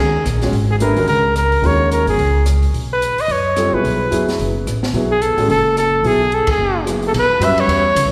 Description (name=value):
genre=modal jazz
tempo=218 BPM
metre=4/4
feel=swing 58% on 8ths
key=unclear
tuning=A4 = 441 Hz
part: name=clear trumpet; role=melody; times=0.0-8.1 s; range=G#4 to E5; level=-19 LUFS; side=equal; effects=none
part: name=upright bass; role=bass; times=0.0-8.1 s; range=F#1 to F#2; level=-21 LUFS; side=equal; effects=none
part: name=open jazz drum kit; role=drums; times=0.3-8.0 s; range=hi-hat, kick drum, ride cymbal, rim click, snare drum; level=-30 LUFS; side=equal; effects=none
part: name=warm baby grand piano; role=accompaniment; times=0.4-7.8 s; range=F#3 to C#5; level=-23 LUFS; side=equal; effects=none
room=wet concert hall reverb, RT60 2.1 s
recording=recorded in a church or concert hall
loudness=-16 LUFS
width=mono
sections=0.0-7.1 A section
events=band accent 6.5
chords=0.0 G#9sus4; 2.7 B7sus4; 7.1 Bsus4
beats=0.26 | 0.54 0.81 1.09 1.36 | 1.64 1.91 2.19 2.46 | 2.74 3.01 3.29 3.56 | 3.84 4.11 4.39 4.66 | 4.94 5.21 5.49 5.76 | 6.04 6.32 6.59 6.87 | 7.14 7.42 7.69 7.96